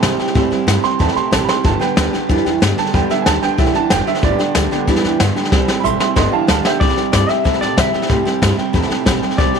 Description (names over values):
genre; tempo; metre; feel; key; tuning
rockabilly; 186 BPM; 4/4; straight; C major; A4 = 440 Hz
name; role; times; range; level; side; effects
clear upright piano; accompaniment; 0.0-6.8 s; D3 to C6; -20 LUFS; right 12 dB; none
picked steel-string acoustic guitar; accompaniment; 0.0-9.6 s; G2 to G4; -22 LUFS; left 12 dB; none
electric guitar through a small old amp; riff; 0.0-9.6 s; G2 to A3; -20 LUFS; right 12 dB; none
upright bass; bass; 0.0-9.6 s; F1 to C3; -21 LUFS; left 1 dB; tube saturation
jazz brush drum kit; drums; 0.0-9.6 s; hi-hat, kick drum, snare drum; -18 LUFS; left 2 dB; none
electric guitar through a small old amp; melody; 6.8-9.6 s; D5 to E5; -20 LUFS; left 6 dB; tape echo
room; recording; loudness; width
light reverb, small room ambience; 1960s-style stereo with parts hard left and right; -13 LUFS; side -6 dB against mid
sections
0.0-6.8 A section; 6.8-9.6 B section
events
upright piano solo 0.0-6.8; drum fill 1.5, 5.5-6.8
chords
0.0 C; 1.6 G; 5.5 C; 6.2 G; 6.8 C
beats
0.03 | 0.35 0.68 1.00 1.32 | 1.65 1.97 2.30 2.62 | 2.94 3.27 3.59 3.91 | 4.23 4.55 4.88 5.20 | 5.52 5.84 6.16 6.49 | 6.81 7.13 7.45 7.77 | 8.09 8.41 8.74 9.06 | 9.38